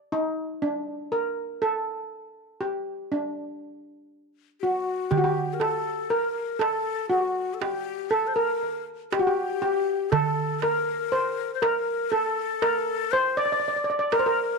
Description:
Arabic maqam ensemble; 120 BPM (eighths); 10/8; straight; D maqam hijaz; A4 = 440 Hz
steel pan; melody; 0.0-14.6 s; D4 to D5; -25 LUFS; right 1 dB
breathy ney; second line; 4.6-14.6 s; F#4 to D5; -29 LUFS; left 11 dB
darbuka; percussion; 5.1-14.4 s; -28 LUFS; right 9 dB
light reverb, small room ambience; 1960s-style stereo with parts hard left and right; -24 LUFS; side -3 dB against mid
0.0-5.1 A section; 5.1-14.6 B section

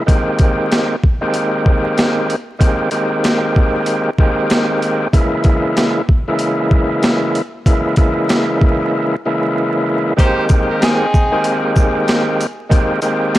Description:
hip hop, boom-bap hip-hop; 95 BPM; 4/4; swing 60% on 16ths; Ab major; A4 = 441 Hz
overdriven tonewheel organ; accompaniment; 0.0-13.4 s; Db3 to G4; -16 LUFS; equal; fast rotary speaker, high-pass filter, low-pass filter
boom bap sampler-style drum kit; drums; 0.1-13.4 s; hi-hat, kick drum, shaker, snare drum; -14 LUFS; equal
clear saxophone section; stabs; 10.2-11.7 s; C4 to C5; -20 LUFS; equal; high-pass filter, low-pass filter, tape echo
little or no reverb; dry, gritty hardware recording, transformer saturation, vinyl crackle; -13 LUFS; side -15 dB against mid
0.0-10.2 A section; 10.2-13.4 B section
break 8.9-10.2
0.1 Abmaj9; 5.1 Dbm6; 10.2 Abmaj9

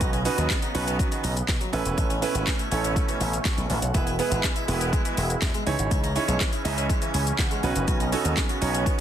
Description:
dance-pop; 122 BPM; 4/4; straight; A4 = 440 Hz
warm baby grand piano; accompaniment; 0.0-9.0 s; B3 to C#6; -29 LUFS; right 6 dB; sidechain pumping
filtered supersaw swell; sustained chords; 0.0-9.0 s; B2 to D#5; -32 LUFS; equal; sidechain pumping
harpsichord; arpeggios; 0.0-8.9 s; D#3 to E5; -33 LUFS; left 1 dB; sidechain pumping, ping-pong delay
slap bass with an envelope filter; bass; 0.0-8.9 s; E1 to C#3; -27 LUFS; equal; sidechain pumping
house drum kit; drums; 0.0-9.0 s; handclaps, hi-hat, kick drum, shaker, snare drum; -26 LUFS; equal
light reverb; dense, heavily limited modern master; -22 LUFS; side -10 dB against mid
0.0-9.0 A section
grand piano fill 3.2-3.9, 6.9-7.9
0.0 Badd9; 1.7 Aadd9; 3.9 E; 5.7 C#madd9; 7.6 Badd9

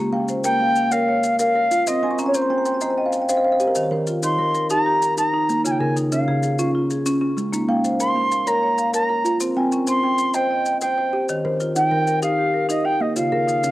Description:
southern african traditional, mbira-style interlocking cycle; 127 BPM (dotted quarters); 12/8; straight; Bb dorian; A4 = 440 Hz
kalimba; arpeggios; 0.0-13.7 s; Db3 to Db6; -23 LUFS; right 2 dB; cassette tape
marimba with medium hard mallets; arpeggios; 0.0-13.7 s; Db3 to Ab5; -24 LUFS; left 2 dB; cassette tape
maracas; percussion; 0.3-13.7 s; -31 LUFS; left 3 dB
wooden flute; melody; 0.4-13.7 s; C5 to C6; -20 LUFS; equal; cassette tape
moderate spring reverb, RT60 2.2 s; home recording on cassette; -18 LUFS; side -16 dB against mid
0.0-13.7 A section
kalimba fill 1.9-3.8
0.0 Bbm; 1.9 Cm; 3.8 Eb; 5.6 Db; 7.5 Bbm; 9.4 Cm; 11.3 Eb; 13.2 Db

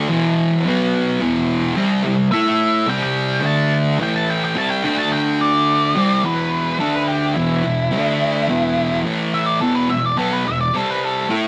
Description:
rock; 107 BPM; 4/4; straight; E minor; A4 = 440 Hz
thick fuzz guitar; riff; 0.0-11.5 s; E2 to A4; -20 LUFS; equal; distortion
octave-fuzz lead guitar; melody; 2.3-11.3 s; E4 to A5; -23 LUFS; equal; distortion
moderate studio reverb, RT60 0.5 s; rough rehearsal-room recording; -18 LUFS; mono
0.0-6.2 A section; 6.2-11.5 B section
0.1 E5; 0.7 B5; 1.2 E5; 1.8 C5; 2.3 A5; 2.9 C5; 3.4 D5; 4.0 A5; 4.6 C5; 4.8 D5; 6.0 C5; 6.2 E5; 6.8 D5; 7.4 E5; 7.9 D5; 8.5 E5; 9.1 A5; 9.6 E5; 10.7 C5

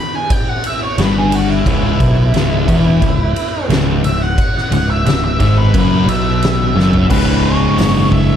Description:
stoner and doom metal; 88 BPM; 4/4; straight; C# minor; A4 = 440 Hz
octave-fuzz lead guitar; melody; 0.0-8.4 s; E4 to B5; -20 LUFS; equal; distortion, analog delay
oversized low-tuned drum kit; drums; 0.3-8.3 s; crash cymbal, hi-hat, kick drum, ride cymbal, snare drum, toms; -17 LUFS; equal
thick fuzz guitar; riff; 1.0-8.4 s; C#2 to C#3; -16 LUFS; left 7 dB; distortion
thick fuzz guitar; riff; 1.0-8.4 s; C#2 to C#3; -18 LUFS; right 7 dB; distortion
modern bright picked electric bass; bass; 1.0-8.3 s; C#1 to B1; -18 LUFS; equal; tube saturation
little or no reverb; dark, warm production; -11 LUFS; side -9 dB against mid
0.0-7.1 A section; 7.1-8.4 B section
lead electric guitar solo 0.0-7.1; drum fill 6.8-7.1
0.0 C#m; 7.1 C#5

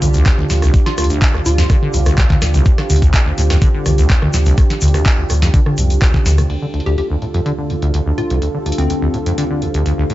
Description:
acid house; 125 BPM; 4/4; straight; D minor; A4 = 440 Hz
warm analog pad; sustained chords; 0.0-10.1 s; D2 to A4; -24 LUFS; right 2 dB; chorus, sidechain pumping
acid bass, saw; riff; 0.0-10.1 s; C2 to D3; -18 LUFS; equal; lush chorus, sidechain pumping
saturated sub bass; bass; 0.0-6.5 s; C2 to D2; -14 LUFS; equal; sidechain pumping
booming analog drum machine; drums; 0.0-10.1 s; crash cymbal, handclaps, hi-hat, rim click, snare drum, toms; -21 LUFS; equal; low-pass filter on hats, low-pass filter on snare, low-pass filter on toms, low-pass filter on cymbals, low-pass filter on room
tube shaker; percussion; 0.0-6.5 s; -30 LUFS; left 4 dB
deep dark ambient pad; texture; 0.0-10.1 s; D4 to G5; -27 LUFS; right 1 dB; chorus, built-in reverb, sidechain pumping
electronic kick drum; drums; 0.3-6.2 s; -12 LUFS; equal
plucky unison lead; melody; 0.9-1.8, 6.9-9.1 s; C4 to G4; -25 LUFS; left 1 dB; analog delay
digital ambience; nothing above 7.7 kHz; -12 LUFS; side -15 dB against mid
0.0-6.5 A section; 6.5-10.1 B section
filter sweep on drum 6.5-10.1
0.0 Dm

